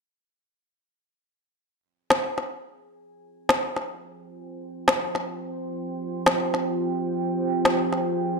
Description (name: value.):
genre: half-time drum and bass.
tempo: free time.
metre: none.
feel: none.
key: F minor.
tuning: A4 = 440 Hz.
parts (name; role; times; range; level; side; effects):
deep dark ambient pad; sustained chords; 4.3-8.4 s; F4 to C6; -27 LUFS; right 2 dB; chorus, built-in reverb.
electronic snare drum; drums; 2.1-8.0 s; none; -22 LUFS; left 1 dB; none.
room: wet digital room reverb, RT60 1.2 s.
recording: none.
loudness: -23 LUFS.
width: side -4 dB against mid.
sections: 1.4-8.4 A section.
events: filter sweep on ambient pad 1.4-8.4.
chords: 1.4 Fm.